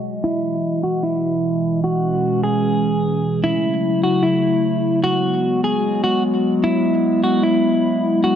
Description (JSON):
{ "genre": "hip hop", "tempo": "150 BPM", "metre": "4/4", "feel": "half-time", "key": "F# dorian", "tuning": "A4 = 440 Hz", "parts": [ { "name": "warbly tape-like pad", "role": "sustained chords", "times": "0.0-8.4 s", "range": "B2 to D#5", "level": "-18 LUFS", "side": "equal", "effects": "chorus, built-in reverb" }, { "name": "clean electric guitar", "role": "melody", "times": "0.2-8.4 s", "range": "E4 to G#4", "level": "-20 LUFS", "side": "equal", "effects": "digital delay" } ], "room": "light reverb", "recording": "dark, warm production, low-pass filter", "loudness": "-16 LUFS", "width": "side -9 dB against mid", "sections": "0.0-3.4 A section; 3.4-8.4 B section", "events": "filter sweep 0.0-3.4", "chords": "0.2 Emaj7; 1.8 C#m7; 3.4 F#m7; 5.0 G#m7; 6.6 E", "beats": "| 0.23 0.63 1.03 1.43 | 1.83 2.23 2.63 3.03 | 3.43 3.83 4.23 4.63 | 5.03 5.43 5.83 6.23 | 6.63 7.03 7.43 7.83 | 8.23" }